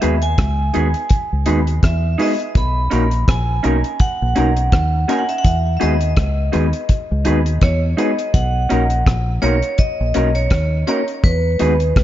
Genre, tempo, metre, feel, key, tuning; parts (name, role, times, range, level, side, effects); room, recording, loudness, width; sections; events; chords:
lovers rock reggae; 83 BPM; 4/4; swing 56% on 16ths; B major; A4 = 441 Hz
vibraphone with hard mallets; melody; 0.0-12.0 s; B4 to B5; -22 LUFS; right 1 dB; tape echo
tine electric piano; accompaniment; 0.0-11.7 s; G#3 to F#4; -24 LUFS; left 4 dB; fast stereo tremolo
electric guitar through a small old amp; stabs; 0.0-11.7 s; C#4 to B4; -24 LUFS; right 5 dB
deep dub fingered electric bass; bass; 0.0-12.0 s; A#1 to E2; -18 LUFS; equal
deep reggae drum kit; drums; 0.0-12.0 s; hi-hat, kick drum, rim click; -17 LUFS; equal
light reverb, small room ambience; dark, warm production, nothing above 7.5 kHz; -15 LUFS; side -12 dB against mid
0.0-12.0 A section
0.0 Emaj7; 2.6 Bmaj9; 5.4 Emaj7; 8.3 Bmaj9; 11.2 Emaj7